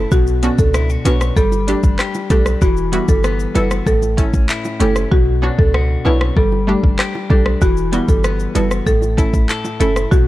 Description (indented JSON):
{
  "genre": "dancehall",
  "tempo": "96 BPM",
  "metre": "4/4",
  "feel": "straight",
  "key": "unclear",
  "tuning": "A4 = 439 Hz",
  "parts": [
    { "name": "electric guitar at the edge of break-up", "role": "arpeggios", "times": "0.0-10.3 s", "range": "A2 to C#5", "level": "-23 LUFS", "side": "left 4 dB", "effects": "none" },
    { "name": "clean 808-style bass", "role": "bass", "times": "0.0-10.3 s", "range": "E1 to C#2", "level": "-18 LUFS", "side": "equal", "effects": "none" },
    { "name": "buzzing marimba with medium mallets", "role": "melody", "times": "0.1-10.2 s", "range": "F#4 to B4", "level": "-21 LUFS", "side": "right 1 dB", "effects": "none" },
    { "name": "afro-pop drum kit", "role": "drums", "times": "0.1-10.3 s", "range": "handclaps, hi-hat, kick drum, rim click, shaker", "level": "-17 LUFS", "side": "equal", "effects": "none" },
    { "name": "analog pluck", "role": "accompaniment", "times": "0.4-9.9 s", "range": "G3 to A4", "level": "-22 LUFS", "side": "right 1 dB", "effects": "chorus, sidechain pumping" },
    { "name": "bongos", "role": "percussion", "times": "0.4-9.9 s", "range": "none", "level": "-27 LUFS", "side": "right 3 dB", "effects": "none" }
  ],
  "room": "little or no reverb",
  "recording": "dark, warm production",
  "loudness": "-13 LUFS",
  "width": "side -16 dB against mid",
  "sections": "0.0-10.3 A section",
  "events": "hi-hats muted 5.1-7.6",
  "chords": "0.1 Bmadd9; 1.4 Gsus2; 2.6 Emadd9; 3.9 A; 5.1 Bmadd9; 6.4 Gsus2; 7.6 Emadd9; 8.9 A"
}